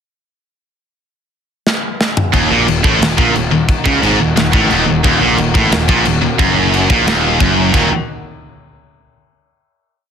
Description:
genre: heavy metal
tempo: 178 BPM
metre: 4/4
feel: straight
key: Eb minor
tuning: A4 = 440 Hz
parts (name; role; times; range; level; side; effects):
- tight metal drum kit; drums; 1.7-7.8 s; china cymbal, crash cymbal, kick drum, snare drum, toms; -16 LUFS; left 1 dB; none
- muted studio string section; sustained chords; 2.3-7.9 s; Eb3 to Gb4; -24 LUFS; left 1 dB; none
- distorted electric guitar; riff; 2.3-7.9 s; Eb2 to Eb4; -20 LUFS; right 1 dB; distortion
- high-gain distorted guitar; riff; 2.3-7.9 s; Eb2 to Eb3; -16 LUFS; left 11 dB; distortion
- high-gain distorted guitar; riff; 2.3-7.9 s; Eb2 to Eb3; -16 LUFS; right 11 dB; distortion
- fuzz picked electric bass; bass; 2.3-7.9 s; Eb1 to Db2; -19 LUFS; equal; overdrive
room: light reverb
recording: dense, heavily limited modern master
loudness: -10 LUFS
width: side -7 dB against mid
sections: 1.0-2.3 pickup bar; 2.3-7.7 riff; 7.7-9.1 final chord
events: drum fill 1.7-2.3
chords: 1.0 N.C.; 2.3 Ebm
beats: | 0.98 1.31 1.65 1.99 | 2.33 2.67 3.00 3.34 | 3.68 4.02 4.36 4.70 | 5.04 5.38 5.71 6.05 | 6.39 6.73 7.07 7.40 | 7.74

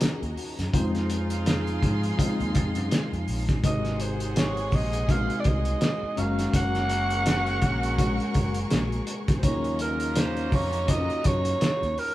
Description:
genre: lush 1970s-style soul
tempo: 83 BPM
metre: 4/4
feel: swing 58% on 16ths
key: Eb dorian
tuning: A4 = 440 Hz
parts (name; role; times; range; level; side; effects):
- rich studio violin section; second line; 0.0-12.1 s; Gb4 to Db6; -38 LUFS; equal; none
- tine electric piano; accompaniment; 0.0-12.1 s; C3 to Eb5; -32 LUFS; left 2 dB; overdrive, fast stereo tremolo
- warm studio string section; sustained chords; 0.0-12.1 s; C3 to Ab4; -40 LUFS; equal; none
- mellow horn section; stabs; 0.0-11.9 s; C3 to Ab4; -36 LUFS; right 1 dB; none
- fingered electric bass; bass; 0.0-11.9 s; Gb1 to Ab2; -30 LUFS; equal; none
- cloth-damped thuddy drum kit; drums; 0.0-12.1 s; hi-hat, kick drum, snare drum; -26 LUFS; equal; none
- growling alto saxophone; melody; 3.7-12.1 s; Bb4 to Gb5; -29 LUFS; right 2 dB; none
room: moderate large studio reverb, RT60 0.9 s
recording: band playing live in one room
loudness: -23 LUFS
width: side -15 dB against mid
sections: 0.0-12.1 A section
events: none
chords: 0.0 Ebm7; 0.7 Fm7; 3.6 Ab7; 6.2 Gb; 9.4 Ebm7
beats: 0.01 | 0.73 1.46 2.19 2.91 | 3.64 4.36 5.09 5.81 | 6.54 7.26 7.99 8.71 | 9.44 10.16 10.89 11.61

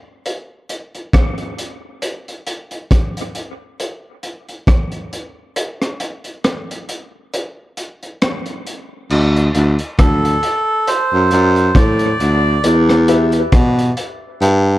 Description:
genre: dub reggae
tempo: 68 BPM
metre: 4/4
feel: swing 57% on 16ths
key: unclear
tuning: A4 = 439 Hz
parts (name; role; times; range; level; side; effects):
- crunchy breakbeat drum kit; drums; 0.3-14.6 s; crash cymbal, hi-hat, kick drum, rim click; -17 LUFS; equal; none
- breathy baritone saxophone; bass; 9.1-14.8 s; D2 to B2; -13 LUFS; equal; none
- warm upright piano; stabs; 9.5-13.3 s; D4 to E5; -24 LUFS; left 5 dB; high-pass filter, low-pass filter, dub echo
- melodica; melody; 10.0-12.7 s; A4 to D5; -18 LUFS; right 2 dB; dub echo
room: light reverb, studio reverb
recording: dark, warm production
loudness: -13 LUFS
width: side -15 dB against mid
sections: 0.0-9.1 A section; 9.1-14.8 B section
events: break 0.0-9.1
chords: 0.0 N.C.; 9.1 D; 12.6 Em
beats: 0.25 1.14 | 2.02 2.91 3.79 4.68 | 5.56 6.45 7.33 8.22 | 9.10 9.99 10.87 11.76 | 12.64 13.52 14.41

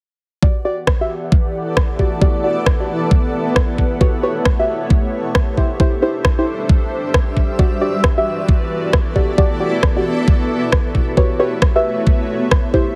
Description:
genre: UK garage, two-step garage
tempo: 134 BPM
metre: 4/4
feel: swing 62% on 16ths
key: E minor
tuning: A4 = 440 Hz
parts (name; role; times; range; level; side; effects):
- airy breathy pad; sustained chords; 0.4-13.0 s; E3 to F#5; -28 LUFS; equal; chorus, sidechain pumping
- deep mellow chord stab; stabs; 0.4-12.9 s; E4 to E5; -22 LUFS; equal; lush chorus, delay
- electronic kick drum; drums; 0.4-12.8 s; none; -17 LUFS; equal; overdrive
- granular cloud pad; texture; 1.2-13.0 s; G3 to E5; -26 LUFS; equal; built-in reverb, sidechain pumping
- electronic rim click; drums; 0.9-12.6 s; none; -21 LUFS; equal; overdrive
room: light reverb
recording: heavily compressed radio sound, multiband compression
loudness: -17 LUFS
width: mono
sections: 0.4-13.0 A section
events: none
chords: 0.4 Em7; 4.0 A13; 5.6 D7sus4; 7.6 Em7; 11.2 A13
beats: | 0.43 0.87 1.32 1.77 | 2.22 2.67 3.11 3.56 | 4.01 4.46 4.90 5.35 | 5.80 6.25 6.69 7.14 | 7.59 8.04 8.48 8.93 | 9.38 9.83 10.28 10.72 | 11.17 11.62 12.07 12.52

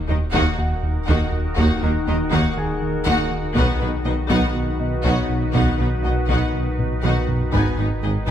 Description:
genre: cinematic, hybrid orchestral and electronic film score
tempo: 121 BPM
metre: 4/4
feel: straight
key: Eb minor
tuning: A4 = 438 Hz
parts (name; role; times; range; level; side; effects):
- evolving wavetable pad; sustained chords; 0.0-8.3 s; Eb3 to B4; -27 LUFS; left 1 dB; chorus, built-in reverb
- sub bass with octave; bass; 0.0-8.3 s; Eb1 to B1; -27 LUFS; left 1 dB; none
- clear symphonic violin section; second line; 0.1-8.3 s; Bb3 to Ab5; -28 LUFS; left 3 dB; none
- rich studio viola section; accompaniment; 0.1-8.3 s; Bb3 to Eb4; -27 LUFS; equal; none
- smooth gliding synth bass; riff; 0.1-8.3 s; Eb2 to B2; -25 LUFS; right 2 dB; none
- clear symphonic cello section; bass; 0.1-8.3 s; Ab2 to Eb3; -29 LUFS; equal; none
- mellow tuba; bass; 0.1-8.3 s; Ab1 to Eb2; -28 LUFS; right 3 dB; none
- rich symphonic double bass section; bass; 0.1-8.3 s; Ab1 to Eb2; -28 LUFS; right 2 dB; none
- taiko ensemble; drums; 0.3-8.3 s; none; -27 LUFS; left 1 dB; none
- clear grand piano; texture; 0.6-7.6 s; Gb4 to Ab5; -34 LUFS; left 2 dB; tape echo
room: moderate scoring stage reverb, RT60 2.0 s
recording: close, detailed microphones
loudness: -18 LUFS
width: side -10 dB against mid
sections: 0.0-8.3 A section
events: drum fill 6.8-7.5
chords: 0.0 Ebm; 3.6 B; 7.5 Abm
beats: 0.09 0.58 1.08 | 1.58 2.07 2.57 3.06 | 3.56 4.06 4.55 5.05 | 5.54 6.04 6.54 7.03 | 7.53 8.02

